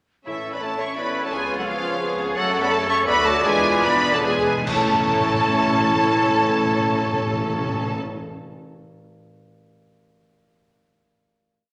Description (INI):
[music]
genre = classical, dramatic, fast romantic movement for symphony orchestra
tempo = 138-174 BPM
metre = 3/4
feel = rubato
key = A major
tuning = A4 = 440 Hz
[part]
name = bright symphonic violin section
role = melody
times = 0.3-8.0 s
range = E5 to C#6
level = -27 LUFS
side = equal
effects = none
[part]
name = bright symphonic violin section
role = second line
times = 0.3-7.9 s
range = A3 to A4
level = -33 LUFS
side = equal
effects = none
[part]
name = silver concert flute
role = second line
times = 0.3-7.9 s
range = G#4 to A5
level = -29 LUFS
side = equal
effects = none
[part]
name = warm clarinet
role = second line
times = 0.3-7.9 s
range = E4 to B4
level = -32 LUFS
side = equal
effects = none
[part]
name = warm oboe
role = second line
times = 0.3-7.9 s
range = C#5 to D5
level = -30 LUFS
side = equal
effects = none
[part]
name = clear symphonic viola section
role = accompaniment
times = 0.3-7.9 s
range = E4 to C#5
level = -32 LUFS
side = equal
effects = none
[part]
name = clear French horn section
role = sustained chords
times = 0.3-8.0 s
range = E3 to C#4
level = -33 LUFS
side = equal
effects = none
[part]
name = clear trombone section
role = sustained chords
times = 0.3-7.9 s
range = A2 to D4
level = -34 LUFS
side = equal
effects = none
[part]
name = rich symphonic double bass section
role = bass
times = 0.3-7.9 s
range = A1 to F#2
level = -39 LUFS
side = equal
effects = none
[part]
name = timpani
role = percussion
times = 0.3-0.8, 3.4-7.9 s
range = E2 to A2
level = -32 LUFS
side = equal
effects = none
[part]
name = rich symphonic cello section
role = bass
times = 0.6-7.9 s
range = A2 to A4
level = -30 LUFS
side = equal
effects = none
[part]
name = cymbal swell, clash cymbals and concert bass drum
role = percussion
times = 2.4-5.5 s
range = none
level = -36 LUFS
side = equal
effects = none
[sound]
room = wet scoring stage reverb, RT60 1.6 s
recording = none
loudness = -21 LUFS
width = mono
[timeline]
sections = 0.3-4.7 A section; 4.7-7.2 final chord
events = slowing down 1.8-4.7; timpani fill 3.4-4.7; band accent 4.7-5.1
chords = 0.3 A; 1.3 C#7; 2.4 F#m; 3.1 Bm7/D; 3.4 E7b9; 4.7 A